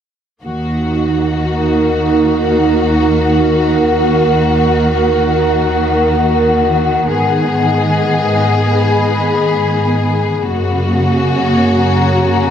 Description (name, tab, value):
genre	dubstep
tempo	free time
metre	none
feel	none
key	Eb minor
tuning	A4 = 440 Hz
part	warm studio string section	sustained chords	0.4-12.5 s	Eb2 to Ab4	-13 LUFS	equal	none
part	warbly tape-like pad	texture	0.7-12.5 s	Eb4 to Cb6	-15 LUFS	right 1 dB	chorus, built-in reverb
room	moderate lush hall reverb, RT60 2.4 s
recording	none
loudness	-11 LUFS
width	side -8 dB against mid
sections	0.4-12.5 A section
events	none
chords	0.4 Ebm; 7.1 Abm; 10.4 Gb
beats	free time